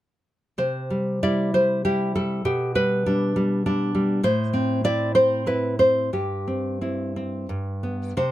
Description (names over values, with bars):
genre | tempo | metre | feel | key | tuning
romantic piece for solo classical guitar | 87-104 BPM | 3/4 | rubato | C major | A4 = 440 Hz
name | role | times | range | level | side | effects
nylon-string guitar | solo | 0.6-8.3 s | G2 to D5 | -21 LUFS | equal | none
room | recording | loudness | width
light reverb | close, detailed microphones | -21 LUFS | side -14 dB against mid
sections
0.6-8.3 A section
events
none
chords
0.6 C; 2.5 G/B; 4.2 Am; 6.1 C/G; 7.5 G